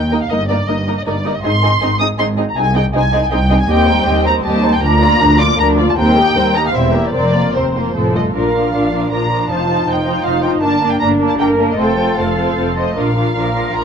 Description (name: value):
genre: quick classical-period movement for string orchestra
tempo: 157 BPM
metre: 3/4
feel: rubato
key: Bb major from 3.7 s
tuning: A4 = 440 Hz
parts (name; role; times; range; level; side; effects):
- muted studio violin section; melody; 0.0-13.8 s; C5 to Eb6; -18 LUFS; equal; none
- muted symphonic cello section; bass; 0.0-13.8 s; C2 to Bb4; -19 LUFS; equal; none
- muted symphonic double bass section; bass; 0.0-13.8 s; E1 to Eb2; -20 LUFS; equal; none
- muted symphonic violin section; second line; 0.1-13.8 s; D4 to Eb5; -20 LUFS; right 1 dB; none
- muted symphonic viola section; accompaniment; 0.1-13.8 s; F3 to F4; -19 LUFS; left 1 dB; none
room: light reverb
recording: worn, warbling old tape, cassette tape, warbly pitch drift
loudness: -12 LUFS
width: side -7 dB against mid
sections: 0.0-8.3 A section; 8.3-13.8 B section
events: none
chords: 0.3 Eb/G; 1.4 Ab; 2.6 Ab/C; 3.7 Cm/Eb; 4.8 Bb/D; 6.0 Cm7/Eb; 6.7 C7/E; 7.1 Fsus4; 8.0 F; 8.3 Bb; 9.5 F7; 10.6 Gm; 11.8 F; 13.0 Bb